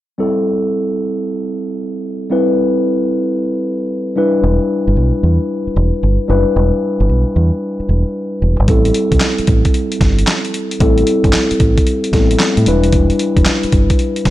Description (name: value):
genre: R&B, new jack swing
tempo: 113 BPM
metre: 4/4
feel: swing 65% on 16ths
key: A minor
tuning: A4 = 440 Hz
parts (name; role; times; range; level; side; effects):
- mellow tine electric piano; accompaniment; 0.2-14.3 s; G3 to B4; -16 LUFS; left 1 dB; phaser
- deep dub fingered electric bass; bass; 4.4-14.3 s; E1 to A2; -14 LUFS; equal; none
- dusty soul sampler-style drum kit; drums; 8.7-14.3 s; handclaps, hi-hat, kick drum, snare drum; -15 LUFS; equal; vintage 12-bit sampler grit
room: digital ambience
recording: none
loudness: -12 LUFS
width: side -14 dB against mid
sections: 0.2-8.7 A section; 8.7-14.3 B section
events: none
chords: 0.2 Am7; 4.2 Em7; 8.7 Am7; 12.7 Em7